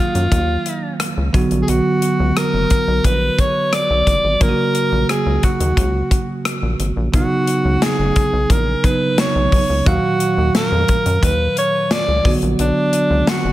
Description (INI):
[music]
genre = 1980s-style pop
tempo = 88 BPM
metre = 4/4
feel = straight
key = unclear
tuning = A4 = 440 Hz
[part]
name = bright alto saxophone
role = melody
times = 0.0-13.5 s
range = D4 to D5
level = -19 LUFS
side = equal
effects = none
[part]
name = bell-like tine electric piano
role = accompaniment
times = 0.0-13.5 s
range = A#2 to E#5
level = -20 LUFS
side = right 2 dB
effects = none
[part]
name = rubbery square bass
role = bass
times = 0.1-13.5 s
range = F#1 to F#2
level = -19 LUFS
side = equal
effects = none
[part]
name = modern studio drum kit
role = drums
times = 0.2-13.4 s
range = hi-hat, kick drum, rim click, snare drum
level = -19 LUFS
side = left 1 dB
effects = gated reverb
[sound]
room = light reverb, small room ambience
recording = none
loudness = -14 LUFS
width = side -15 dB against mid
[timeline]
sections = 0.0-13.5 A section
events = none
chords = 0.0 D#madd9; 1.3 Bm; 4.4 F#/A#; 7.1 Badd9; 9.9 D#madd9; 12.2 Bm